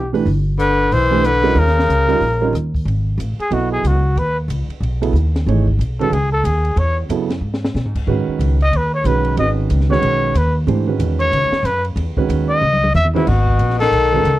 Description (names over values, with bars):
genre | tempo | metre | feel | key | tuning
modal jazz | 184 BPM | 4/4 | swing 61% on 8ths | G# phrygian | A4 = 436 Hz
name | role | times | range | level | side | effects
breathy trumpet | melody | 0.0-14.4 s | E4 to E5 | -18 LUFS | equal | none
breathy tenor saxophone | second line | 0.0-2.6, 13.2-14.4 s | G#2 to E3 | -20 LUFS | left 7 dB | none
upright bass | bass | 0.0-14.4 s | G1 to B2 | -18 LUFS | equal | none
warm grand piano | accompaniment | 0.1-14.2 s | C#3 to D#5 | -20 LUFS | right 6 dB | none
compact cocktail drum kit | drums | 0.1-14.3 s | crash cymbal, hi-hat, kick drum, ride cymbal, rim click, snare drum, toms | -27 LUFS | equal | none
room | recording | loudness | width
little or no reverb | dry, close 1970s-style studio recording | -14 LUFS | side -15 dB against mid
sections
0.0-2.9 A section; 2.9-13.3 B section; 13.3-14.4 C section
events
trumpet solo 2.9-13.3; drum fill 7.4-7.7, 12.6-13.3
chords
0.0 Em7; 1.6 D#7; 2.9 G#m7; 10.7 E6; 13.3 G#m7